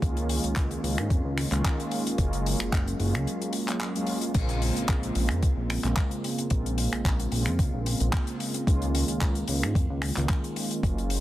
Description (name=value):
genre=nu-disco, nu disco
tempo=111 BPM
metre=4/4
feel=swing 54% on 16ths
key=unclear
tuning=A4 = 440 Hz
part: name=mellow synth brass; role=accompaniment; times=0.0-11.2 s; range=Db3 to F4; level=-30 LUFS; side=right 1 dB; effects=chorus, sidechain pumping, tape echo
part: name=chorused synth bass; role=bass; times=0.0-11.2 s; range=Gb1 to Ab2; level=-28 LUFS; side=equal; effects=none
part: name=damped 70s drum kit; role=drums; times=0.0-11.2 s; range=crash cymbal, finger snaps, handclaps, hi-hat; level=-33 LUFS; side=left 2 dB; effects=none
part: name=electronic kick drum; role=drums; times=0.0-10.9 s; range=none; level=-26 LUFS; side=equal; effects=none
room=studio ambience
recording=dense, heavily limited modern master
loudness=-24 LUFS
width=side -14 dB against mid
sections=0.0-11.2 A section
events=break 3.3-4.3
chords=0.0 Db6; 2.2 Gbmaj9; 4.3 Bbm9; 8.7 Db6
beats=| 0.02 0.56 1.10 1.65 | 2.19 2.73 3.27 3.81 | 4.35 4.89 5.43 5.97 | 6.51 7.05 7.59 8.13 | 8.67 9.21 9.75 10.29 | 10.83